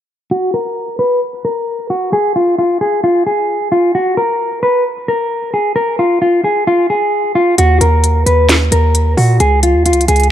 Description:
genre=hip hop, trap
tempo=132 BPM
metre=4/4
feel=half-time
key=Eb minor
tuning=A4 = 440 Hz
part: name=mellow electric guitar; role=melody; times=0.3-10.3 s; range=F4 to Cb5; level=-12 LUFS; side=equal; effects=low-pass filter
part: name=hard-hitting 808-style bass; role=bass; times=7.6-10.3 s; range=Db2 to Bb2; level=-12 LUFS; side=equal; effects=none
part: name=trap drum kit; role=drums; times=7.6-10.3 s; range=finger snaps, hi-hat, snare drum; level=-15 LUFS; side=left 1 dB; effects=none
room=light reverb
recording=dark, warm production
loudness=-11 LUFS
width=side -11 dB against mid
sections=0.3-7.6 A section; 7.6-10.3 B section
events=filter sweep on clean electric guitar 0.3-7.6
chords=0.3 N.C.; 7.6 Eb5; 9.4 Db5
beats=| 0.31 0.77 1.22 1.67 | 2.13 2.58 3.04 3.49 | 3.95 4.40 4.86 5.31 | 5.76 6.22 6.67 7.13 | 7.58 8.04 8.49 8.95 | 9.40 9.86 10.31

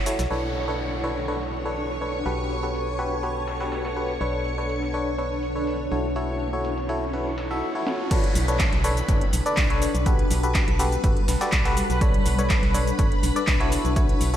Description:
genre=piano house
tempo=123 BPM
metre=4/4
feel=straight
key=B minor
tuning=A4 = 440 Hz
part: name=granular cloud pad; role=texture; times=0.0-14.4 s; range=G3 to A5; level=-30 LUFS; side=left 1 dB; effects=built-in reverb, sidechain pumping
part: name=barking FM electric piano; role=riff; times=0.1-14.4 s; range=D4 to E5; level=-28 LUFS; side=left 1 dB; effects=chorus, tremolo, sidechain pumping, low-pass filter, digital delay
part: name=breakbeat sampler-style drum kit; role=drums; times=0.1-14.3 s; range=hi-hat, snare drum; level=-40 LUFS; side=equal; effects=none
part: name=house drum kit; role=drums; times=0.1-0.3, 7.9-14.4 s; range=crash cymbal, handclaps, hi-hat, shaker, snare drum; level=-29 LUFS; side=equal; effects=low-pass filter on hats, low-pass filter on perc, low-pass filter on snare, low-pass filter on cymbals, gated reverb
part: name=organ-like FM bass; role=bass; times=0.2-14.4 s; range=F#1 to B1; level=-28 LUFS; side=equal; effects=sidechain pumping
part: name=string machine, violins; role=sustained chords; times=0.3-14.4 s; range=B4 to C#6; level=-33 LUFS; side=equal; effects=ensemble chorus, sidechain pumping
part: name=downlifter and riser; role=sound effects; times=0.3-12.0 s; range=none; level=-36 LUFS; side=right 1 dB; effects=none
part: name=electronic kick drum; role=drums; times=8.1-14.1 s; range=none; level=-23 LUFS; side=equal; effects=none
room=moderate lush hall reverb, RT60 1.9 s, digital ambience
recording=bright 1980s-style digital production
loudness=-21 LUFS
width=side -11 dB against mid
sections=0.3-8.1 A section; 8.1-14.4 B section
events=riser 5.4-8.1; drum fill 7.9; drop 8.1-14.4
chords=0.3 Bm9; 2.3 Gmaj9/B; 4.2 Bm9; 5.9 F#m7/B; 8.1 Bm9; 10.1 Gmaj9/B; 12.0 Bm9; 13.7 F#m7/B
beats=| 0.31 0.79 1.28 1.77 | 2.26 2.75 3.23 3.72 | 4.21 4.70 5.18 5.67 | 6.16 6.65 7.13 7.62 | 8.11 8.60 9.09 9.57 | 10.06 10.55 11.04 11.53 | 12.01 12.50 12.99 13.48 | 13.96

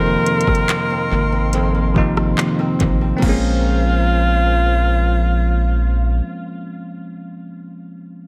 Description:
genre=contemporary R&B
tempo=71 BPM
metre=4/4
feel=straight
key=Bb minor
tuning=A4 = 439 Hz
part: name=edgy alto saxophone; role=melody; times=0.0-6.2 s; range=F4 to Bb4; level=-24 LUFS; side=equal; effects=tape echo
part: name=bell-like tine electric piano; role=accompaniment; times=0.0-8.3 s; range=C3 to Eb4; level=-24 LUFS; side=equal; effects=none
part: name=bright flute section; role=sustained chords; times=0.0-6.2 s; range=Ab4 to C6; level=-32 LUFS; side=equal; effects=none
part: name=nylon-string guitar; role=arpeggios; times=0.0-6.8 s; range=F2 to C5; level=-28 LUFS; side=equal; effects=tape echo
part: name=rubbery square bass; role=bass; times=0.0-6.2 s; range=F1 to Bb1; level=-20 LUFS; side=equal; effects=none
part: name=smooth R&B drum kit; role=drums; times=0.3-3.4 s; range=crash cymbal, handclaps, hi-hat, kick drum, rim click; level=-24 LUFS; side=equal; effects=tape echo
room=studio reverb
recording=echo-heavy mix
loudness=-17 LUFS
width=mono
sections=0.0-3.2 A section; 3.2-6.6 B section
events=none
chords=0.0 F7sus4; 3.2 Bbm9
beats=0.69 1.53 2.38 | 3.22 4.07 4.91 5.76

